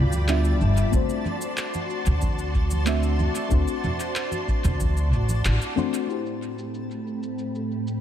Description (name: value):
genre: sunset chillout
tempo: 93 BPM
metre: 4/4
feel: straight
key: unclear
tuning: A4 = 438 Hz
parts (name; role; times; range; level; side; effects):
- mellow FM electric piano; accompaniment; 0.0-8.0 s; G3 to E5; -29 LUFS; moving between left 8 dB and right 5 dB; chorus, phaser, auto-pan, tape echo
- soft string machine; sustained chords; 0.0-8.0 s; A2 to C6; -31 LUFS; equal; ensemble chorus
- upright bass; bass; 0.0-5.6 s; G1 to D2; -22 LUFS; equal; none
- twinkling granular texture; texture; 0.0-6.1 s; A5; -41 LUFS; right 1 dB; built-in reverb
- electronic shaker and handclaps; drums; 0.1-8.0 s; none; -33 LUFS; equal; low-pass filter on perc, studio reverb, low-pass filter on snare, tape echo
- congas; percussion; 0.1-5.9 s; none; -30 LUFS; right 2 dB; none
- electronic kick drum; drums; 0.9-4.9 s; none; -25 LUFS; equal; studio reverb
room: light reverb, digital ambience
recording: echo-heavy mix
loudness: -22 LUFS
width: side -10 dB against mid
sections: 0.0-6.1 A section; 6.1-8.0 B section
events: band accent 5.4-5.8; filter sweep on string machine 6.1-8.0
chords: 0.0 G7; 0.9 D7; 6.1 Am7